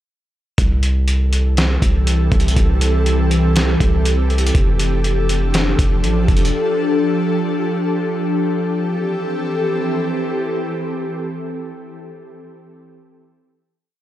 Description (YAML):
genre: hip hop, atmospheric cloud-rap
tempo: 121 BPM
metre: 4/4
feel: half-time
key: C major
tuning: A4 = 440 Hz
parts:
  - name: ethereal airy pad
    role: sustained chords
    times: 1.4-12.1 s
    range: E3 to A4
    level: -19 LUFS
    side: left 1 dB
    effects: ensemble chorus, built-in reverb
  - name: long sustained 808-style bass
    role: bass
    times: 0.6-6.5 s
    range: F1 to C2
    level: -16 LUFS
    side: equal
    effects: tube saturation
  - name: trip hop sampler-style drum kit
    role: drums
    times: 0.6-6.5 s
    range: hi-hat, kick drum, snare drum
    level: -18 LUFS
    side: equal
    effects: none
room: little or no reverb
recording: dry, gritty hardware recording, transformer saturation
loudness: -15 LUFS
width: side -13 dB against mid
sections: 0.6-8.5 verse; 8.5-12.5 final chord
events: none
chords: 0.6 C6; 4.5 F69; 8.5 C6